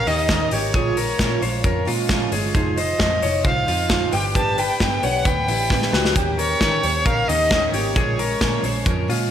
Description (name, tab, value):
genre	jangly indie pop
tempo	133 BPM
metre	4/4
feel	straight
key	Eb mixolydian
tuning	A4 = 445 Hz
part	dark violin	melody	0.0-9.1 s	Db5 to A5	-23 LUFS	equal	none
part	picked twelve-string acoustic guitar	accompaniment	0.0-9.3 s	Bb2 to Db5	-26 LUFS	right 5 dB	slapback echo
part	electric guitar through a small old amp	arpeggios	0.0-9.3 s	Eb4 to Db5	-26 LUFS	left 5 dB	slapback echo, digital delay
part	vintage muted picked electric bass	bass	0.0-9.3 s	F1 to Eb3	-26 LUFS	equal	none
part	modern studio drum kit	drums	0.1-9.2 s	hi-hat, kick drum, snare drum	-22 LUFS	equal	none
room	moderate recital hall reverb, RT60 1.5 s, studio ambience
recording	big arena sound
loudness	-17 LUFS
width	side -9 dB against mid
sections	0.0-9.3 A section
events	drum fill 5.7-6.2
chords	0.0 Eb7; 0.7 Bbm7; 2.5 Fm7; 4.1 G; 6.2 Eb7; 8.0 Bbm7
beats	0.29 | 0.74 1.20 1.65 2.10 | 2.55 3.00 3.45 3.90 | 4.35 4.80 5.26 5.71 | 6.16 6.61 7.06 7.51 | 7.96 8.42 8.87